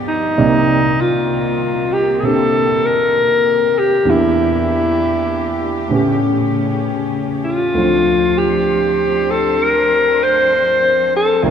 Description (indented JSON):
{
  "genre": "jazz ballad",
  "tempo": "65 BPM",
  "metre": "4/4",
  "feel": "swing 66% on 8ths",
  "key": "unclear",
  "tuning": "A4 = 444 Hz",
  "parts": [
    { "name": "warm concert grand piano", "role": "accompaniment", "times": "0.0-11.5 s", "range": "C2 to D5", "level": "-19 LUFS", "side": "right 1 dB", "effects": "none" },
    { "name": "warm chamber cello section", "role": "sustained chords", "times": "0.0-11.5 s", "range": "C#3 to D5", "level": "-23 LUFS", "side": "left 1 dB", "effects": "none" },
    { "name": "breathy alto saxophone", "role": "melody", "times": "0.1-11.5 s", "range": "Eb4 to C5", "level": "-14 LUFS", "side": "left 1 dB", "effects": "none" }
  ],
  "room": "wet cathedral reverb, RT60 4.3 s",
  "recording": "recorded in a church or concert hall",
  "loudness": "-13 LUFS",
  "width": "side -8 dB against mid",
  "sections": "0.4-11.5 A section",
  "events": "none",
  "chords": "0.4 Cm9; 4.1 Em7b5; 5.9 A7; 7.8 Dm7",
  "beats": "| 0.36 1.29 2.21 3.14 | 4.07 4.99 5.91 6.84 | 7.76 8.68 9.60 10.53 | 11.45"
}